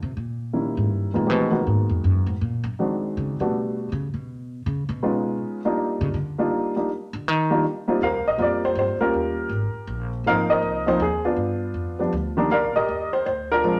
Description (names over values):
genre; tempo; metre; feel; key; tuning
jazz piano trio; 160 BPM; 3/4; swing 64% on 8ths; Eb major; A4 = 442 Hz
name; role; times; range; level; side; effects
upright bass; bass; 0.0-13.8 s; G1 to Eb3; -28 LUFS; equal; none
dark baby grand piano; melody; 0.5-13.8 s; Eb3 to F5; -24 LUFS; equal; none
room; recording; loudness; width
wet studio reverb, RT60 0.9 s; none; -24 LUFS; mono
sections
0.0-8.0 A section; 8.0-13.8 B section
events
upright bass solo 0.0-8.0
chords
0.2 Eb7b9; 1.3 Abm9; 2.4 Ab7#11; 3.5 Gmaj9; 5.8 Ebmaj9; 8.0 Eb69; 9.1 Eb9; 10.3 Ab69; 11.4 G7; 12.5 Cm9